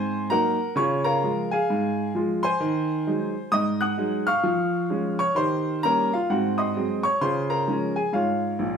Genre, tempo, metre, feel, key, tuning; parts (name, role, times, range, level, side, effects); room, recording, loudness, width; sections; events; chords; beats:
jazz, stride piano; 130 BPM; 4/4; swing 61% on 8ths; Db major; A4 = 440 Hz
clear baby grand piano; solo; 0.0-8.8 s; Bb1 to Gb6; -22 LUFS; equal
wet club reverb, RT60 0.7 s; heard from further back in the room; -22 LUFS; side -7 dB against mid
0.0-8.8 A section
grand piano fill 8.6
0.0 Ab9; 0.8 Db; 2.6 Ab7/Eb; 4.5 Db/F; 5.4 Eb7; 6.3 Ab7; 7.2 Db; 8.2 Db/Ab
0.30 | 0.76 1.22 1.69 2.15 | 2.61 3.07 3.53 3.99 | 4.46 4.92 5.38 5.84 | 6.30 6.76 7.23 7.69 | 8.15 8.61